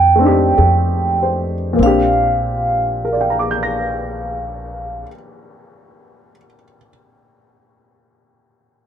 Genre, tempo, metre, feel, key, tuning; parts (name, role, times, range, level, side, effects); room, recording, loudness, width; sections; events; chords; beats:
jazz ballad; 48 BPM; 4/4; swing 68% on 8ths; Bb major; A4 = 440 Hz
vibraphone with medium mallets; melody; 0.0-5.1 s; F5 to G5; -18 LUFS; right 3 dB
upright bass; bass; 0.0-5.0 s; Bb1 to F2; -20 LUFS; equal
warm upright piano; accompaniment; 0.2-8.9 s; Bb2 to Bb6; -18 LUFS; left 1 dB
light reverb; dark, warm production; -14 LUFS; side -9 dB against mid
0.0-1.8 A section; 1.8-6.8 B section
slowing down 0.0-1.8
0.0 F13; 1.8 Bb6
0.57 | 1.78 3.04 4.30 5.55